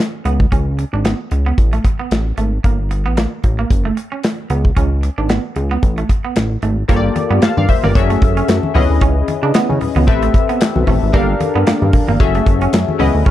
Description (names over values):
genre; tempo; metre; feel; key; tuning
early-eighties boogie funk; 113 BPM; 4/4; swing 56% on 16ths; unclear; A4 = 440 Hz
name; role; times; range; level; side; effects
modern studio drum kit; drums; 0.0-13.3 s; handclaps, hi-hat, kick drum, snare drum; -16 LUFS; equal; none
electric guitar at the edge of break-up; riff; 0.3-13.3 s; A3 to D4; -23 LUFS; right 6 dB; lush chorus
chorused synth bass; bass; 0.3-13.3 s; F#1 to C#3; -16 LUFS; equal; none
funky polysynth comp; accompaniment; 6.9-13.3 s; Bb3 to A5; -18 LUFS; left 5 dB; chorus
congas; percussion; 7.2-13.3 s; none; -22 LUFS; left 2 dB; none
room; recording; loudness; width
studio reverb; dark, warm production; -13 LUFS; side -13 dB against mid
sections
0.0-6.9 A section; 6.9-13.3 B section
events
none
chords
0.3 C#5; 1.6 N.C.; 2.6 Gmadd9; 3.7 F#m; 4.5 C#5; 5.8 N.C.; 6.9 Gm9; 8.0 F#m9; 8.7 C#m9; 10.1 Am9; 11.1 Gm9; 12.2 F#m9